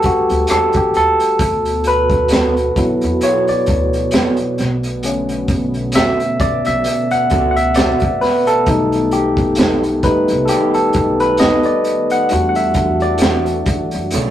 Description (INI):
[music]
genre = R&B, neo-soul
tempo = 66 BPM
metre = 4/4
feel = swing 57% on 16ths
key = B minor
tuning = A4 = 440 Hz
[part]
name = barky tine electric piano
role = accompaniment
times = 0.0-14.3 s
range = C#3 to F#5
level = -15 LUFS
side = left 1 dB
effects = overdrive
[part]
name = crunchy breakbeat drum kit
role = drums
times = 0.0-14.3 s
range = hi-hat, kick drum, rim click, snare drum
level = -19 LUFS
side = equal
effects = none
[part]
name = upright bass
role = bass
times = 0.1-14.3 s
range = B1 to F#2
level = -24 LUFS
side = equal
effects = none
[part]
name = electric guitar through a small old amp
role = second line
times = 0.5-14.3 s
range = B3 to C#5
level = -22 LUFS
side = right 5 dB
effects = none
[part]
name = warm analog pad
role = sustained chords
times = 1.4-14.3 s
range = B2 to A4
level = -23 LUFS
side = right 2 dB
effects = chorus
[sound]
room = moderate studio reverb, RT60 0.5 s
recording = rough rehearsal-room recording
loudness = -13 LUFS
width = side -11 dB against mid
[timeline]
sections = 0.0-14.3 A section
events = tine electric piano solo 0.0-14.3; kick muted 14.1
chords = 0.0 Em11; 1.4 D6; 8.7 Baug7; 12.3 Em11